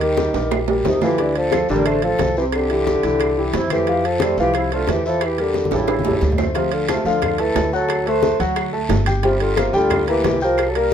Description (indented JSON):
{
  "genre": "Afro-Cuban jazz",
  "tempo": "179 BPM",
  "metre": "4/4",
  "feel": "straight",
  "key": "F major, D minor from 6.6 s",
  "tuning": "A4 = 441 Hz",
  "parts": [
    { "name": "mellow bassoon", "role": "melody", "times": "0.0-10.9 s", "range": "C3 to A3", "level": "-21 LUFS", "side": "left 1 dB", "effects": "none" },
    { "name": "silver concert flute", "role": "second line", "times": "0.0-10.9 s", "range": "Eb4 to C5", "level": "-26 LUFS", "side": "right 4 dB", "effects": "none" },
    { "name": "warm concert grand piano", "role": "accompaniment", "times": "0.0-10.9 s", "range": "C3 to G6", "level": "-22 LUFS", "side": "left 1 dB", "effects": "none" },
    { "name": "upright bass", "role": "bass", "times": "0.0-10.9 s", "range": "G1 to F2", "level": "-25 LUFS", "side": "equal", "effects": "none" },
    { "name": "bongos", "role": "percussion", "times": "0.0-10.9 s", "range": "none", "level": "-27 LUFS", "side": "left 9 dB", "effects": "none" },
    { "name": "congas", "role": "percussion", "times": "0.0-10.9 s", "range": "none", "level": "-28 LUFS", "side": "left 2 dB", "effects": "none" },
    { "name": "timbales", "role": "percussion", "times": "0.0-10.9 s", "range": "none", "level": "-26 LUFS", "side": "right 9 dB", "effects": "none" },
    { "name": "guiro", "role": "percussion", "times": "0.2-10.9 s", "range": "none", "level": "-37 LUFS", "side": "left 2 dB", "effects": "none" },
    { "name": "claves", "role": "percussion", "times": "0.5-10.7 s", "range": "none", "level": "-34 LUFS", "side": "right 3 dB", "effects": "none" }
  ],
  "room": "moderate club reverb, RT60 0.5 s",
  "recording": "minimal, uncompressed stereo recording",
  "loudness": "-16 LUFS",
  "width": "side -8 dB against mid",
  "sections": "0.0-6.6 A section; 6.6-10.9 B section",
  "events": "drum fill 0.3-1.2, 5.5-6.6",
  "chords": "0.0 Ebadd9; 1.2 Dm7; 2.5 C; 3.9 Fmaj7; 5.2 Em7b5; 5.9 A7; 6.6 Dm; 7.9 D7; 9.2 Gm7"
}